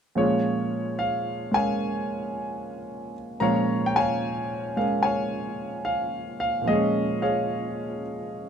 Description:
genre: solo jazz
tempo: 74 BPM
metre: 4/4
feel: swing 68% on 8ths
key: Bb minor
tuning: A4 = 441 Hz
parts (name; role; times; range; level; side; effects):
- clear grand piano; solo; 0.2-8.5 s; Bb2 to Bb5; -24 LUFS; equal; none
room: light reverb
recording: close, detailed microphones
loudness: -24 LUFS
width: side -7 dB against mid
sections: 0.2-8.5 A section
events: none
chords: 0.2 Bbm7

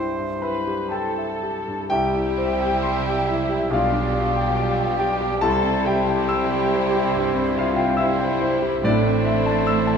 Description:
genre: classical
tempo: 58-74 BPM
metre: 4/4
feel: rubato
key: C major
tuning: A4 = 441 Hz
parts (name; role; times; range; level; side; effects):
- clear concert grand piano; melody; 0.0-10.0 s; B1 to E6; -22 LUFS; left 1 dB; none
- hollow concert flute; second line; 0.0-10.0 s; D5 to B5; -30 LUFS; left 2 dB; none
- warm clarinet; second line; 0.0-10.0 s; E4 to G4; -33 LUFS; left 5 dB; none
- warm oboe; second line; 0.0-10.0 s; C5 to E5; -31 LUFS; right 4 dB; none
- dark bassoon; accompaniment; 0.0-10.0 s; G3 to E4; -30 LUFS; right 3 dB; none
- rich symphonic viola section; accompaniment; 0.4-10.0 s; D4 to B4; -31 LUFS; right 2 dB; none
- warm symphonic violin section; melody; 1.9-10.0 s; E4 to G4; -32 LUFS; left 4 dB; none
- warm symphonic violin section; second line; 1.9-10.0 s; G3 to E4; -32 LUFS; left 2 dB; none
- dark French horn section; sustained chords; 1.9-9.2 s; G3 to E4; -32 LUFS; left 4 dB; none
- rich symphonic double bass section; bass; 1.9-10.0 s; A1 to C2; -31 LUFS; right 4 dB; none
- warm symphonic cello section; bass; 1.9-10.0 s; A2 to C3; -31 LUFS; right 3 dB; none
room: moderate recital hall reverb, RT60 1.5 s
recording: minimal, uncompressed stereo recording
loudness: -19 LUFS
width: side -6 dB against mid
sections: 0.0-1.9 A section; 1.9-10.0 B section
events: none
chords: 0.0 C; 3.7 G7/B; 5.4 C; 8.9 Am

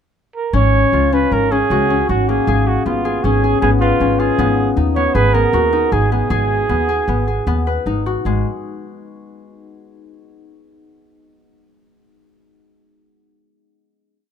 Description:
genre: contemporary instrumental, chamber music in an uneven meter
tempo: 156 BPM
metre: 5/4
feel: straight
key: G# dorian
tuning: A4 = 440 Hz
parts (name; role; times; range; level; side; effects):
- clear flugelhorn; melody; 0.4-7.8 s; E#4 to C#5; -18 LUFS; right 6 dB; none
- concert harp; arpeggios; 0.5-8.4 s; G#3 to B4; -19 LUFS; left 7 dB; none
- upright bass; bass; 0.5-8.4 s; G#1 to D#2; -18 LUFS; right 1 dB; none
room: little or no reverb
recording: close, detailed microphones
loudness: -14 LUFS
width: side -8 dB against mid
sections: 0.0-0.5 pickup bar; 0.5-8.3 A section; 8.3-10.2 final note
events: none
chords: 0.0 N.C.; 0.5 F#maj7/G#; 2.5 C#7/G#; 4.4 G#m7; 8.3 N.C.

